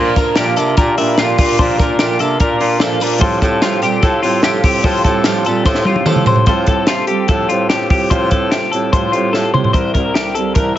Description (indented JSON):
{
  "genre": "jangly indie pop",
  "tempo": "147 BPM",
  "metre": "4/4",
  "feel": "straight",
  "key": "F major",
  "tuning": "A4 = 440 Hz",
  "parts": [
    { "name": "fingerpicked steel-string acoustic guitar", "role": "accompaniment", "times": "0.0-10.8 s", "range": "A2 to Bb4", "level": "-20 LUFS", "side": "right 8 dB", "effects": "none" },
    { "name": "warm upright piano", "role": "accompaniment", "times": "0.0-10.8 s", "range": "C4 to C5", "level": "-22 LUFS", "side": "left 4 dB", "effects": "none" },
    { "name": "hollow soft pad", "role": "sustained chords", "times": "0.5-6.4 s", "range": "A4 to D6", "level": "-25 LUFS", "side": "right 2 dB", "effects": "chorus" },
    { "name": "twelve-string electric guitar", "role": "arpeggios", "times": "0.0-10.8 s", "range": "E4 to C5", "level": "-18 LUFS", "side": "left 4 dB", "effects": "spring reverb" },
    { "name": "bright bass clarinet", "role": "bass", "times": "0.0-10.8 s", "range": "C2 to C3", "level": "-20 LUFS", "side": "equal", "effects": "none" },
    { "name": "compact cocktail drum kit", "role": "drums", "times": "0.2-10.7 s", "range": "hi-hat, kick drum, snare drum, toms", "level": "-16 LUFS", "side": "equal", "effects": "none" },
    { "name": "tambourine", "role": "percussion", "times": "0.2-6.4 s", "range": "none", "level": "-32 LUFS", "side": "right 6 dB", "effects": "none" }
  ],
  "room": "light reverb",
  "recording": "heavily compressed radio sound, nothing above 7.7 kHz",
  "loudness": "-12 LUFS",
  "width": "side -12 dB against mid",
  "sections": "0.0-6.5 A section; 6.5-9.7 B section; 9.7-10.8 C section",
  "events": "drum fill 5.7-6.5, 9.3-9.7",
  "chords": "0.0 Bb; 3.2 Fadd9/A; 9.7 C7"
}